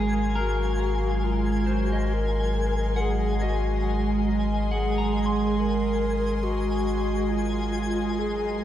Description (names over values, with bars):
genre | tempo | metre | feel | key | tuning
ambient | 69 BPM | 4/4 | straight | unclear | A4 = 440 Hz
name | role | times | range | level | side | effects
breathy mellow wooden-headed alto flute | melody | 0.0-8.6 s | F4 to Bb4 | -30 LUFS | left 3 dB | tape echo
soft additive organ-like pad | sustained chords | 0.0-8.6 s | Gb3 to C6 | -27 LUFS | right 4 dB | ensemble chorus, built-in reverb
clean electric guitar | arpeggios | 0.0-7.8 s | Ab4 to C6 | -34 LUFS | left 2 dB | spring reverb, tape echo
warm sub bass | bass | 0.0-8.6 s | Ab1 | -27 LUFS | left 1 dB | none
twinkling granular texture | texture | 0.0-8.6 s | Ab5 | -35 LUFS | left 2 dB | built-in reverb
room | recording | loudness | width
wet concert hall reverb, RT60 2.2 s | dark, warm production | -23 LUFS | side -11 dB against mid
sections
0.0-8.6 A section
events
none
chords
0.0 Ab13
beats
0.38 1.25 | 2.12 2.98 3.85 4.72 | 5.59 6.46 7.33 8.20